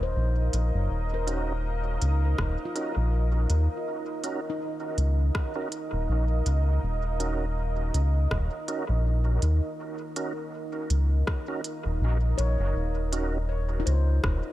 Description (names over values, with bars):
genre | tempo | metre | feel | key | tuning
ambient dub | 81 BPM | 4/4 | swing 56% on 16ths | Eb dorian | A4 = 442 Hz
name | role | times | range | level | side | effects
deep dark ambient pad | sustained chords | 0.0-14.5 s | Eb4 to F5 | -34 LUFS | right 2 dB | chorus, built-in reverb
handpan | arpeggios | 0.0-7.3, 12.4-14.5 s | Eb4 to Db5 | -38 LUFS | left 5 dB | tape echo
round analog bass | bass | 0.0-14.4 s | Eb1 to Eb2 | -24 LUFS | equal | tube saturation
organic electronic drum kit | drums | 0.5-14.4 s | hi-hat, rim click | -37 LUFS | equal | studio reverb, dub echo
percussive tonewheel organ | stabs | 1.3-13.4 s | Db4 to Bb4 | -37 LUFS | right 3 dB | chorus vibrato, fast rotary speaker, dub echo
electronic kick drum | drums | 2.4-14.4 s | none | -29 LUFS | equal | studio reverb
room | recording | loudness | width
little or no reverb | none | -25 LUFS | side -15 dB against mid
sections
0.0-12.8 A section; 12.8-14.5 B section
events
none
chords
0.0 Ebm7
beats
0.16 | 0.91 1.65 2.39 3.13 | 3.87 4.61 5.35 6.09 | 6.83 7.57 8.31 9.05 | 9.79 10.53 11.28 12.02 | 12.76 13.50 14.24